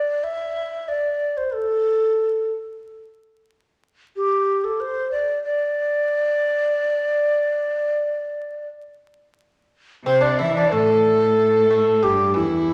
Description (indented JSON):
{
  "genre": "chinese traditional, Chinese chamber ensemble",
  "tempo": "92 BPM",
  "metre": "4/4",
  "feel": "rubato",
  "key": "D shang mode",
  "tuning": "A4 = 439 Hz",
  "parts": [
    { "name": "breathy bright xiao", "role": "melody", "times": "0.0-12.7 s", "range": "E4 to E5", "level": "-22 LUFS", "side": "equal", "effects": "none" },
    { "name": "mellow large dizi", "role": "second line", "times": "10.1-12.7 s", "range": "E4 to E5", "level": "-26 LUFS", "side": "equal", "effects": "none" },
    { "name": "pipa", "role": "second line", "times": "10.1-12.7 s", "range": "E3 to E4", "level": "-30 LUFS", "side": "equal", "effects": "none" },
    { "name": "rich cello", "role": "second line", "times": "10.1-12.7 s", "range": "E2 to E3", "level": "-26 LUFS", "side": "equal", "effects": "none" }
  ],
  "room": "wet recital hall reverb, RT60 1.5 s",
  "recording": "vinyl crackle",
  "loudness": "-21 LUFS",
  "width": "mono",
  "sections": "0.0-9.4 A section; 9.4-12.7 B section",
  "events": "none",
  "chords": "none"
}